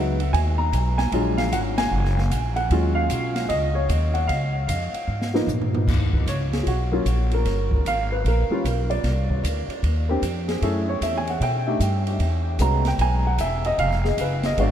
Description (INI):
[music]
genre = jazz piano trio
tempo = 152 BPM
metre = 4/4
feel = swing 64% on 8ths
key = unclear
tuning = A4 = 439 Hz
[part]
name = dark upright piano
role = melody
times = 0.0-14.7 s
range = E#3 to A#5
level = -24 LUFS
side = equal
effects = wide subtle chorus, diffuse ambient delay
[part]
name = upright bass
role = bass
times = 0.0-14.7 s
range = E1 to B2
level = -23 LUFS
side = equal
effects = none
[part]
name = open jazz drum kit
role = drums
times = 0.2-14.7 s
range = crash cymbal, hi-hat, kick drum, ride cymbal, snare drum, toms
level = -29 LUFS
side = equal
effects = none
[sound]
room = moderate cathedral reverb, RT60 6.4 s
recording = dreamy mix soaked in reverb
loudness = -20 LUFS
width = side -10 dB against mid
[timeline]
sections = 0.0-5.9 A section; 5.9-14.7 B section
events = band accent 1.7; drum fill 5.1-5.9; upright piano solo 5.9-14.7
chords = 0.0 Emaj7 (rootless); 1.1 A#7b13; 2.7 D#m11; 4.3 C#6; 5.9 Ebm7; 7.5 G7#9; 9.0 Cmadd9; 10.6 Gbm7; 11.4 B(#5, no3); 12.2 Eadd9; 13.8 F(b5, no3)